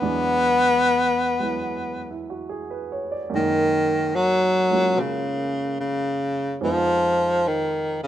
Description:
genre	jazz ballad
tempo	73 BPM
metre	4/4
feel	swing 68% on 8ths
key	unclear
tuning	A4 = 440 Hz
part	clear baritone saxophone	melody	0.0-8.1 s	Cb3 to Cb4	-20 LUFS	left 1 dB	none
part	warm grand piano	accompaniment	0.0-8.1 s	E2 to D5	-29 LUFS	right 4 dB	none
room	light reverb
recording	minimal, uncompressed stereo recording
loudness	-19 LUFS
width	side -11 dB against mid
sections	0.0-8.1 A section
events	none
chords	0.0 E9; 3.3 Gb69; 6.6 Fm7b5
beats	| 0.02 0.85 1.68 2.50 | 3.32 4.13 4.96 5.79 | 6.61 7.44

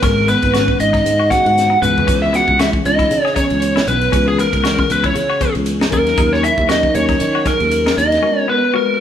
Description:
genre	electric jazz fusion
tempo	117 BPM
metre	4/4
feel	swing 56% on 16ths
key	G# minor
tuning	A4 = 440 Hz
part	biting lead guitar	melody	0.0-9.0 s	G#4 to F#5	-16 LUFS	equal	overdrive
part	breathy trombone	second line	0.0-9.0 s	G#3 to F#4	-23 LUFS	right 5 dB	none
part	tine electric piano	accompaniment	0.0-9.0 s	D#3 to B4	-22 LUFS	left 5 dB	none
part	clean electric guitar	stabs	0.0-8.9 s	B3 to G#4	-26 LUFS	left 5 dB	none
part	sustaining fretless electric bass	bass	0.0-8.2 s	G#1 to D#3	-20 LUFS	equal	none
part	tight funk drum kit	drums	0.0-8.2 s	crash cymbal, hi-hat, kick drum, ride cymbal, snare drum, toms	-21 LUFS	equal	none
room	moderate large studio reverb, RT60 1.2 s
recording	band playing live in one room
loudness	-12 LUFS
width	side -9 dB against mid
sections	0.0-9.0 A section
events	drum fill 1.6-2.1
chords	0.0 G#m7; 1.8 C#m7; 5.9 D#m7; 8.2 G#m9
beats	| 0.03 0.54 1.06 1.57 | 2.08 2.59 3.11 3.62 | 4.13 4.64 5.16 5.67 | 6.18 6.69 7.21 7.72 | 8.23 8.74

